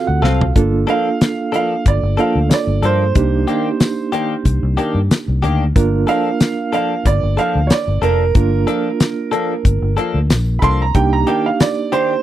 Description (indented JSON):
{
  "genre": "straight-eighth soul blues",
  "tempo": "92 BPM",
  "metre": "4/4",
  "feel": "swing 55% on 16ths",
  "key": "G minor",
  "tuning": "A4 = 440 Hz",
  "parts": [
    { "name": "bright reed electric piano", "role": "accompaniment", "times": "0.0-12.2 s", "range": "Bb3 to F#5", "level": "-20 LUFS", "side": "right 5 dB", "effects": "fast tremolo" },
    { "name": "vintage muted fingered electric bass", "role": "bass", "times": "0.1-11.2 s", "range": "F1 to G2", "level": "-16 LUFS", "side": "left 1 dB", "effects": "none" },
    { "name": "direct-recorded clean electric guitar", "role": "stabs", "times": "0.2-12.1 s", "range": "Eb3 to A4", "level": "-20 LUFS", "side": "left 5 dB", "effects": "lush chorus" },
    { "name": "damped 70s drum kit", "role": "drums", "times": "0.2-12.1 s", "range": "hi-hat, kick drum, snare drum, tambourine, toms", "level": "-14 LUFS", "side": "left 1 dB", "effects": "none" },
    { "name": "clear upright piano", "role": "second line", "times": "0.9-12.2 s", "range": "Bb4 to C6", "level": "-20 LUFS", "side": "right 5 dB", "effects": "none" }
  ],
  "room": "studio ambience",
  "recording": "dry, close 1970s-style studio recording",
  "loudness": "-14 LUFS",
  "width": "side -12 dB against mid",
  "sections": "0.6-12.2 A section",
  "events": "reed electric piano fill 0.0-0.6; drum fill 0.2-0.6; upright piano solo 0.6-12.2",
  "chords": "0.0 D7#9; 0.6 Gm9; 3.2 Cm9; 5.8 Gm9; 11.0 Cm9"
}